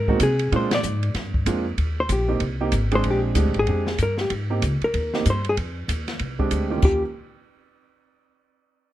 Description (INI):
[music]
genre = jazz, small-group swing and bop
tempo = 190 BPM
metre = 4/4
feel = swing 61% on 8ths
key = Eb major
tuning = A4 = 440 Hz
[part]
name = hollow-body jazz guitar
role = melody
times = 0.0-7.0 s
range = G4 to D5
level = -24 LUFS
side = left 2 dB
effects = none
[part]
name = upright bass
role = bass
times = 0.0-7.0 s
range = Ab1 to C3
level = -24 LUFS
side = equal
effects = none
[part]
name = warm concert grand piano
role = accompaniment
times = 0.1-7.0 s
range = Eb3 to Ab4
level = -25 LUFS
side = right 4 dB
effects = none
[part]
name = open jazz drum kit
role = drums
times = 0.1-6.9 s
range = hi-hat, kick drum, ride cymbal, snare drum, splash cymbal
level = -27 LUFS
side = equal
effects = none
[sound]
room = little or no reverb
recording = close, detailed microphones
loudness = -20 LUFS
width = side -14 dB against mid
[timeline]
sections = 0.0-1.8 A section; 1.8-6.8 B section; 6.8-8.1 C section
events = band accent 0.7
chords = 0.0 Ab7; 0.5 Bb7; 1.8 Abmaj7; 3.0 Bb13; 4.3 Abmaj7; 5.6 Bb13 (rootless); 6.8 Eb7